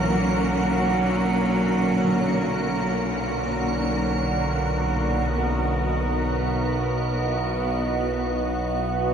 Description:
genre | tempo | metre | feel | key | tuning
dark ambient drone | free time | none | none | unclear | A4 = 440 Hz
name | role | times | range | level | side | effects
clear cello | melody | 0.0-4.0 s | E3 to F#3 | -27 LUFS | right 1 dB | shimmer reverb, diffuse ambient delay
rich studio cello section | sustained chords | 0.0-9.1 s | A#2 to A#4 | -26 LUFS | equal | shimmer reverb
bronze singing bowl | arpeggios | 0.0-9.1 s | F#3 to E4 | -35 LUFS | right 1 dB | none
overtone-sweeping drone | drone | 0.0-9.1 s | B1 to D3 | -25 LUFS | equal | chorus, built-in reverb
icy glass pad | texture | 0.0-9.1 s | F#5 | -32 LUFS | right 7 dB | chorus, built-in reverb, shimmer reverb
room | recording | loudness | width
wet cathedral reverb, RT60 6.0 s | none | -21 LUFS | side -7 dB against mid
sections
0.0-5.3 A section; 5.3-9.1 B section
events
none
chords
0.0 F#/B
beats
free time

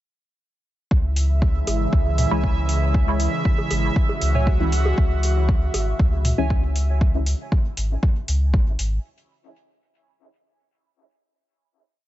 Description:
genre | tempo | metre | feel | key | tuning
dub techno | 118 BPM | 4/4 | straight | C# minor | A4 = 440 Hz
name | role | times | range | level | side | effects
airy breathy pad | sustained chords | 0.9-7.0 s | C#3 to F#4 | -28 LUFS | equal | chorus, sidechain pumping
pure sine sub bass | bass | 0.9-9.0 s | G#1 to C#2 | -21 LUFS | equal | sidechain pumping
electronic kick drum | drums | 0.9-8.6 s | none | -19 LUFS | equal | overdrive
bubbling stepped-filter texture | texture | 1.2-7.0 s | E5 | -31 LUFS | right 5 dB | chorus, built-in reverb, sidechain pumping
electronic hi-hat | drums | 1.2-8.9 s | none | -30 LUFS | equal | overdrive
electronic bongos and toms | percussion | 1.7-6.4 s | none | -30 LUFS | equal | sidechain pumping on perc, sidechain pumping on toms, dub echo
warbly lo-fi synth keys | riff | 2.3-6.5 s | C#5 to G#5 | -34 LUFS | right 3 dB | chorus, sidechain pumping, dub echo
filtered dub chord stab | stabs | 2.3-6.5 s | E3 to E4 | -28 LUFS | left 1 dB | chorus, phaser, sidechain pumping, dub echo
room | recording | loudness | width
little or no reverb | nothing above 7.8 kHz | -18 LUFS | side -14 dB against mid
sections
0.9-9.0 groove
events
filter sweep on synth stab 0.9-7.0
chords
0.9 C#m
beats
| 0.91 1.42 1.93 2.44 | 2.94 3.45 3.96 4.47 | 4.98 5.49 6.00 6.50 | 7.01 7.52 8.03 8.54

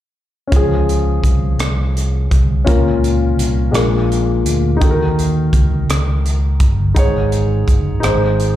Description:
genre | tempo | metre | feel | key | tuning
slow gospel | 56 BPM (dotted quarters) | 6/8 | straight | Db major | A4 = 440 Hz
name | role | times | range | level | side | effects
warm grand piano | accompaniment | 0.5-8.6 s | Ab2 to Db5 | -18 LUFS | left 2 dB | slapback echo
fingered electric bass | bass | 0.5-8.6 s | Gb1 to Eb2 | -17 LUFS | equal | none
crisp fusion drum kit | drums | 0.5-8.6 s | hi-hat, kick drum, rim click | -17 LUFS | right 1 dB | none
room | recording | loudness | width
little or no reverb | live gig heard through the venue's PA, club reverb | -13 LUFS | side -13 dB against mid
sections
0.5-8.6 A section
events
none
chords
0.5 Db; 2.7 Bbm/Db; 3.7 Bb7; 4.8 Ebm; 7.0 Absus4; 8.0 Ab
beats
| 0.52 1.59 | 2.67 3.74 | 4.82 5.89 | 6.96 8.04

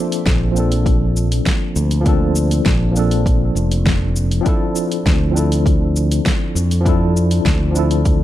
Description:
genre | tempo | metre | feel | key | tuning
sunset chillout | 100 BPM | 4/4 | straight | unclear | A4 = 440 Hz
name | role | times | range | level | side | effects
barky tine electric piano | accompaniment | 0.0-8.2 s | F3 to A4 | -20 LUFS | left 1 dB | medium stereo tremolo, auto-pan, tape echo
deep house drum kit | drums | 0.1-8.2 s | hi-hat, shaker, snare drum | -23 LUFS | equal | overdrive, studio reverb
fingered electric bass | bass | 0.3-8.2 s | F1 to F2 | -17 LUFS | equal | none
electronic kick drum | drums | 0.3-8.2 s | none | -18 LUFS | equal | overdrive, studio reverb
room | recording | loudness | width
little or no reverb | dark, warm production | -14 LUFS | side -13 dB against mid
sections
0.0-8.2 A section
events
none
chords
0.0 Bbmaj9; 4.5 Dm9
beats
0.26 0.86 1.46 | 2.06 2.66 3.26 3.86 | 4.46 5.06 5.66 6.26 | 6.86 7.46 8.06

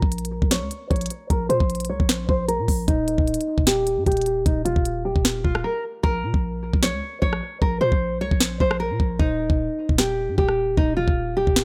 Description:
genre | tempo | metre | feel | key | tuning
hip hop, trap | 152 BPM | 4/4 | half-time | Bb dorian | A4 = 441 Hz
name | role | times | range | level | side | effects
nylon-string guitar | melody | 0.0-11.6 s | Eb4 to Db5 | -26 LUFS | equal | low-pass filter, analog delay
growling 808-style bass | bass | 0.0-11.6 s | Eb1 to Bb2 | -30 LUFS | equal | none
trap drum kit | drums | 0.0-11.6 s | hi-hat, kick drum, rim click, snare drum | -23 LUFS | equal | none
room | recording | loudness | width
digital ambience | dry, gritty hardware recording | -22 LUFS | mono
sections
0.0-11.6 A section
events
filter sweep on nylon-string guitar 0.0-6.0; break 5.6-6.0; hi-hats muted 6.0-11.6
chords
0.0 Bbm; 2.9 Eb; 6.0 Bbm; 9.2 Eb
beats
0.12 0.51 0.91 | 1.30 1.70 2.09 2.48 | 2.88 3.27 3.67 4.06 | 4.46 4.85 5.25 5.64 | 6.04 6.43 6.83 7.22 | 7.62 8.01 8.41 8.80 | 9.20 9.59 9.98 10.38 | 10.78 11.17 11.56

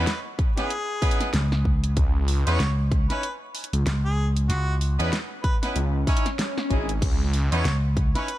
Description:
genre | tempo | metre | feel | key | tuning
glitch hop | 95 BPM | 4/4 | swing 59% on 16ths | C# minor | A4 = 440 Hz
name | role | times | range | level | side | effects
warm harmonica | melody | 0.0-8.4 s | F#4 to C#5 | -33 LUFS | equal | dub echo
clear horn section | stabs | 0.0-8.3 s | G#3 to C#5 | -31 LUFS | equal | sidechain pumping, dub echo
phased detuned saw bass | bass | 0.0-7.6 s | G#1 to E2 | -23 LUFS | equal | phaser
pop drum kit | drums | 0.1-8.4 s | crash cymbal, hi-hat, snare drum | -31 LUFS | equal | none
electronic kick drum | drums | 0.4-8.1 s | none | -23 LUFS | equal | none
vintage slap bass | bass | 1.3-8.1 s | C#2 | -22 LUFS | equal | none
swell | sound effects | 6.0-7.0 s | none | -33 LUFS | left 3 dB | none
room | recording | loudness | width
digital ambience | vinyl crackle | -21 LUFS | side -14 dB against mid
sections
0.0-8.4 A section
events
swell 6.0-7.0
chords
0.0 C#m9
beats
0.07 0.70 1.34 | 1.97 2.60 3.23 3.86 | 4.49 5.13 5.76 6.39 | 7.02 7.65 8.28

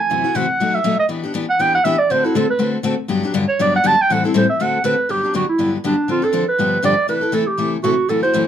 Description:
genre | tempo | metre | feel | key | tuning
jazz | 241 BPM | 4/4 | swing 57% on 8ths | G major | A4 = 439 Hz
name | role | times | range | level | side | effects
warm clarinet | melody | 0.0-8.5 s | D4 to A5 | -16 LUFS | right 3 dB | none
picked steel-string acoustic guitar | accompaniment | 0.1-8.4 s | F#2 to A4 | -19 LUFS | left 4 dB | none
room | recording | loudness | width
moderate club reverb, RT60 0.6 s | dark, warm production | -15 LUFS | side -9 dB against mid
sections
0.0-5.1 A section; 5.1-8.5 B section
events
clarinet solo 0.0-5.1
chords
0.1 F#m7b5; 0.6 B7; 1.1 Em7; 2.1 D7; 3.1 Gmaj7; 4.1 Am7; 4.6 D7; 5.1 Gmaj7; 6.1 Dm7; 6.6 G7; 7.1 C6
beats
| 0.10 0.35 0.60 0.84 | 1.09 1.34 1.59 1.84 | 2.09 2.34 2.59 2.84 | 3.09 3.34 3.59 3.84 | 4.09 4.33 4.58 4.83 | 5.08 5.33 5.58 5.83 | 6.08 6.33 6.58 6.83 | 7.08 7.33 7.58 7.83 | 8.08 8.32

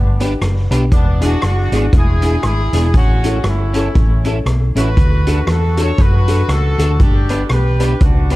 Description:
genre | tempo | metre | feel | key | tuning
ska | 118 BPM | 4/4 | swing 58% on 8ths | D major | A4 = 441 Hz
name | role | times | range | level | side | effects
warm horn section | melody | 0.0-8.4 s | B3 to C#5 | -22 LUFS | equal | tape echo
hollow-body short-scale fingered electric bass | bass | 0.0-8.4 s | E1 to F#2 | -15 LUFS | equal | none
electric guitar at the edge of break-up | accompaniment | 0.2-8.4 s | B3 to A4 | -26 LUFS | right 3 dB | ensemble chorus
dark upright piano | stabs | 0.2-8.4 s | C#4 to B4 | -23 LUFS | left 3 dB | tape echo
street-band drum kit | drums | 0.2-8.4 s | hi-hat, kick drum, rim click | -16 LUFS | equal | none
room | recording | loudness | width
little or no reverb | dark, warm production, lossy compression artefacts | -12 LUFS | side -18 dB against mid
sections
0.0-8.4 A section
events
none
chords
0.0 G; 0.9 E7; 2.9 A; 5.0 D; 7.0 G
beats
0.41 | 0.92 1.43 1.93 2.44 | 2.95 3.45 3.96 4.47 | 4.97 5.48 5.99 6.49 | 7.00 7.50 8.01

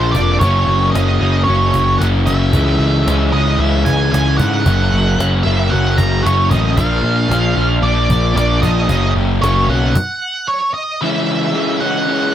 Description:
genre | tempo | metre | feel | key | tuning
indie rock | 113 BPM | 4/4 | straight | F# mixolydian | A4 = 440 Hz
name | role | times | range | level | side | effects
octave-fuzz lead guitar | melody | 0.0-12.3 s | B#4 to A#5 | -18 LUFS | right 2 dB | distortion, slapback echo
raw garage guitar | riff | 0.0-12.3 s | F#2 to D4 | -17 LUFS | left 1 dB | overdrive
fuzz picked electric bass | bass | 0.0-9.9 s | E#1 to G#2 | -16 LUFS | equal | overdrive
cajon | drums | 0.1-10.1 s | none | -19 LUFS | equal | none
room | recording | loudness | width
little or no reverb | faint mains hum | -12 LUFS | side -11 dB against mid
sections
0.0-11.0 A section; 11.0-12.3 A section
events
stop 10.0-11.0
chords
0.4 F#; 2.5 C#m; 4.7 F#; 6.8 A#; 8.9 F#; 11.0 C#m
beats
| 0.41 0.94 1.48 2.01 | 2.54 3.07 3.60 4.13 | 4.66 5.19 5.72 6.25 | 6.78 7.30 7.83 8.36 | 8.89 9.42 9.95 10.48 | 11.01 11.54 12.07

